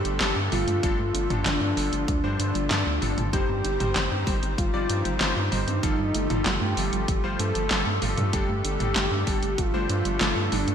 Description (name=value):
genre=synthwave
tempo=96 BPM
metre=4/4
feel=straight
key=unclear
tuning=A4 = 439 Hz
part: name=soft octave-layered synth lead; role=melody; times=0.0-10.7 s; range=D4 to A4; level=-30 LUFS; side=left 1 dB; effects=chorus, digital delay
part: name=airy dreamy lead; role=second line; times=0.0-10.7 s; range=D4 to A4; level=-36 LUFS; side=left 1 dB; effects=none
part: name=lush unison pad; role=sustained chords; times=0.0-10.7 s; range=D3 to C4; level=-32 LUFS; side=right 1 dB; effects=chorus, sidechain pumping
part: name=warbly dusty pluck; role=arpeggios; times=0.0-10.7 s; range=F3 to Eb4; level=-35 LUFS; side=right 4 dB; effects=chorus, digital delay
part: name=bright electric grand piano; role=stabs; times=0.0-10.7 s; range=G3 to D5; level=-33 LUFS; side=left 2 dB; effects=analog chorus
part: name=round analog bass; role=bass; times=0.0-10.7 s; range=G1 to G2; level=-28 LUFS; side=equal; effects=sidechain pumping
part: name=pop drum kit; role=drums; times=0.1-10.7 s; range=handclaps, hi-hat, snare drum, toms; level=-28 LUFS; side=equal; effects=studio reverb, gated reverb
part: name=electronic kick drum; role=drums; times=0.8-9.7 s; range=none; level=-28 LUFS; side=equal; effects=studio reverb
room=moderate lush hall reverb, RT60 1.8 s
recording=bright 1980s-style digital production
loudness=-22 LUFS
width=side -8 dB against mid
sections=0.0-10.7 A section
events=none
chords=0.0 Gsus2; 3.3 Cm/G; 5.8 Fadd9/G; 8.3 Gsus2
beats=0.21 | 0.83 1.46 2.08 2.71 | 3.33 3.96 4.58 5.21 | 5.83 6.46 7.08 7.71 | 8.33 8.96 9.58 10.21